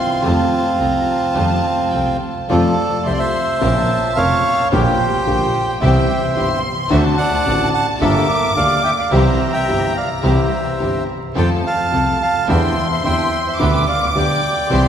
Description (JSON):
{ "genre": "tango", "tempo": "108 BPM", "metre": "4/4", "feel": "rubato", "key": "F major", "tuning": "A4 = 440 Hz", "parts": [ { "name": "bandoneon", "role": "melody", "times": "0.0-14.9 s", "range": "C4 to A5", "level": "-18 LUFS", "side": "right 2 dB", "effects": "none" }, { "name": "warm symphonic violin section", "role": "second line", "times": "0.0-14.9 s", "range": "G5 to D6", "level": "-23 LUFS", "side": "left 1 dB", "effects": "none" }, { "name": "warm grand piano", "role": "accompaniment", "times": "0.2-14.9 s", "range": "F1 to A4", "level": "-21 LUFS", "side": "left 2 dB", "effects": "none" }, { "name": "clear symphonic string section", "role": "stabs", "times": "0.2-14.9 s", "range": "A3 to Bb4", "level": "-27 LUFS", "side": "right 2 dB", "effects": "none" }, { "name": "clear double bass", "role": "bass", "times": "0.2-14.9 s", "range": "F1 to F2", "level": "-20 LUFS", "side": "right 1 dB", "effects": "none" } ], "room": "wet church reverb, RT60 2.6 s", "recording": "recorded in a church or concert hall, vinyl crackle", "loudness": "-14 LUFS", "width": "side -9 dB against mid", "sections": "0.0-2.5 A section; 2.5-14.9 B section", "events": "none", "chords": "0.2 F; 3.6 Bbmadd9; 4.7 Gm/Bb; 5.8 C; 6.9 D7; 8.0 Gmadd9; 9.1 C; 11.4 F; 12.5 Cadd9/E; 13.6 G/D" }